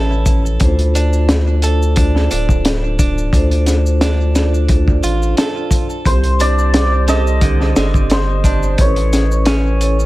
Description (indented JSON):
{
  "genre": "trip hop",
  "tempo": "88 BPM",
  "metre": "4/4",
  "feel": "swing 55% on 16ths",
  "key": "D phrygian",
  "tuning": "A4 = 440 Hz",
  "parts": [
    { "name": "vibraphone with medium hard mallets", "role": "accompaniment", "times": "0.0-10.1 s", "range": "C4 to Eb5", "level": "-22 LUFS", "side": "right 1 dB", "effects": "harmonic tremolo, tape echo" },
    { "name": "clean electric guitar", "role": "arpeggios", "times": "0.0-10.1 s", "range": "D3 to A4", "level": "-24 LUFS", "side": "right 3 dB", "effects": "tape echo" },
    { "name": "round analog bass", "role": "bass", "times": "0.0-10.1 s", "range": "D1 to D2", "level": "-15 LUFS", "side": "equal", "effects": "tube saturation" },
    { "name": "crunchy breakbeat drum kit", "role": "drums", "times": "0.3-10.0 s", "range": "hi-hat, kick drum, snare drum", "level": "-16 LUFS", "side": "equal", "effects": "none" },
    { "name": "maracas", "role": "percussion", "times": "0.3-10.1 s", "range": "none", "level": "-31 LUFS", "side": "left 1 dB", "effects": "tape echo" },
    { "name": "santur", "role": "melody", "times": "6.1-10.1 s", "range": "C5 to Eb5", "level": "-20 LUFS", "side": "equal", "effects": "tape echo" }
  ],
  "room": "small room ambience",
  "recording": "echo-heavy mix",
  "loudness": "-12 LUFS",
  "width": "side -18 dB against mid",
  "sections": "0.0-10.1 A section",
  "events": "none",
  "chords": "0.0 Aadd9; 0.6 Dm7; 6.1 Cm; 8.8 Aadd9"
}